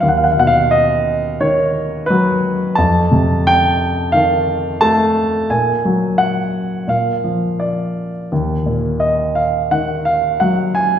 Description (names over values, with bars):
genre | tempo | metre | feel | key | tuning
classical, lyrical solo piano | 87 BPM | 4/4 | rubato | Eb minor | A4 = 440 Hz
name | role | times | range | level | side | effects
warm grand piano | solo | 0.0-11.0 s | D#2 to A5 | -14 LUFS | equal | none
room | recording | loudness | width
wet recital hall reverb, RT60 1.6 s | heard from further back in the room | -14 LUFS | side -9 dB against mid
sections
0.0-11.0 A section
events
none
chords
0.0 Badd9/D#; 2.8 F7; 5.5 Gbadd9/Bb; 6.9 Bb5; 8.3 Ebm